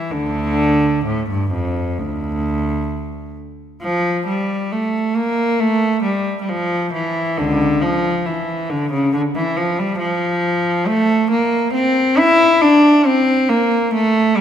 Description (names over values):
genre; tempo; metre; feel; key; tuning
classical, baroque-style suite movement for unaccompanied cello; 68 BPM; 4/4; rubato; D minor; A4 = 440 Hz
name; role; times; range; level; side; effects
warm cello; solo; 0.0-14.4 s; C#2 to E4; -15 LUFS; equal; none
room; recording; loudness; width
wet scoring stage reverb, RT60 1.7 s; minimal, uncompressed stereo recording; -15 LUFS; side -9 dB against mid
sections
0.0-3.8 A section; 3.8-14.4 B section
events
none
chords
none